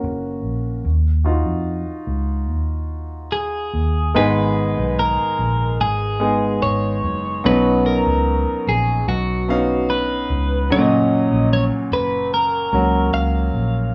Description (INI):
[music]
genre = pop ballad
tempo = 74 BPM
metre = 4/4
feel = straight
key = F# major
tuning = A4 = 439 Hz
[part]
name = clear grand piano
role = accompaniment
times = 0.0-13.9 s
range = G#2 to E#5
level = -23 LUFS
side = equal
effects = none
[part]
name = vintage muted fingered electric bass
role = bass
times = 0.0-13.9 s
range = F#1 to E#2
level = -24 LUFS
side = equal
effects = none
[part]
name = twelve-string electric guitar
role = melody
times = 3.3-13.9 s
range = F#4 to E#5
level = -24 LUFS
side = equal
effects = none
[sound]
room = moderate studio reverb, RT60 0.6 s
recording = band playing live in one room, small room ambience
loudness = -19 LUFS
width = mono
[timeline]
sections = 0.0-4.2 A section; 4.2-13.9 B section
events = grand piano solo 0.0-4.2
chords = 0.0 F#; 0.8 D#madd9; 4.2 G#m; 7.4 Badd9; 10.7 F#